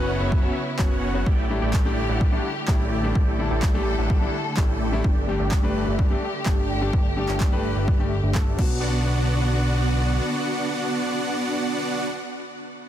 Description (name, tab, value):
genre	EDM, festival progressive house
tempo	127 BPM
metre	4/4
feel	straight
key	B minor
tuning	A4 = 440 Hz
part	clear grand piano	accompaniment	0.0-12.1 s	F#3 to B4	-31 LUFS	left 4 dB	sidechain pumping, ping-pong delay
part	dark studio string section	sustained chords	0.0-12.0 s	C#3 to A4	-32 LUFS	equal	sidechain pumping
part	supersaw chords	riff	0.0-12.0 s	A3 to G5	-27 LUFS	right 1 dB	sidechain pumping, low-pass filter, ping-pong delay
part	fat analog bass	bass	0.0-10.2 s	F#1 to B1	-26 LUFS	equal	tube saturation, sidechain pumping
part	electronic kick drum	drums	0.3-8.7 s	none	-21 LUFS	equal	none
part	big-room dance drum kit	drums	0.8-8.7 s	crash cymbal, handclaps	-36 LUFS	equal	none
room	light reverb, digital ambience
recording	dense, heavily limited modern master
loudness	-20 LUFS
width	side -11 dB against mid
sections	0.0-8.8 A section; 8.8-12.6 B section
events	filter sweep on supersaw synth 0.0-8.8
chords	0.0 F#sus4; 1.3 A7sus4; 5.0 Gsus2; 8.6 Bm